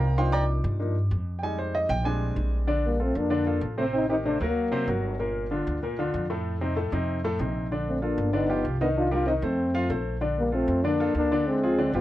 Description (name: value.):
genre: jazz.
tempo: 191 BPM.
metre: 4/4.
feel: straight.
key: Bb major.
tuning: A4 = 445 Hz.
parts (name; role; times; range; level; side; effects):
warm baby grand piano; accompaniment; 0.0-12.0 s; A2 to D6; -28 LUFS; equal; none.
upright bass; bass; 0.0-12.0 s; G1 to G2; -28 LUFS; equal; none.
dark trombone; melody; 2.9-5.0, 7.9-12.0 s; Bb3 to F4; -26 LUFS; left 2 dB; none.
breathy trombone; second line; 2.9-5.0, 7.9-12.0 s; Gb3 to D4; -32 LUFS; right 3 dB; none.
room: light reverb.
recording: worn, warbling old tape, cassette tape, warbly pitch drift.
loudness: -24 LUFS.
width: side -14 dB against mid.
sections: 0.0-2.7 A section; 2.7-12.0 B section.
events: grand piano solo 0.0-2.7.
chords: 0.2 Cm11; 1.4 Fm7; 2.1 Bb13; 2.7 Bbmaj9; 3.9 Am7b5; 4.6 Daug7; 5.2 Gm7; 6.5 F7; 7.7 Bbmaj7; 8.3 G7b13; 9.0 Cm7; 9.6 F; 10.2 Bbmaj9; 11.5 Dm7b5.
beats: | 0.18 0.49 0.80 1.12 | 1.43 1.74 2.06 2.37 | 2.68 3.00 3.31 3.63 | 3.94 4.25 4.57 4.88 | 5.20 5.51 5.83 6.14 | 6.45 6.77 7.08 7.39 | 7.71 8.02 8.34 8.65 | 8.96 9.28 9.59 9.90 | 10.22 10.53 10.84 11.16 | 11.47 11.78.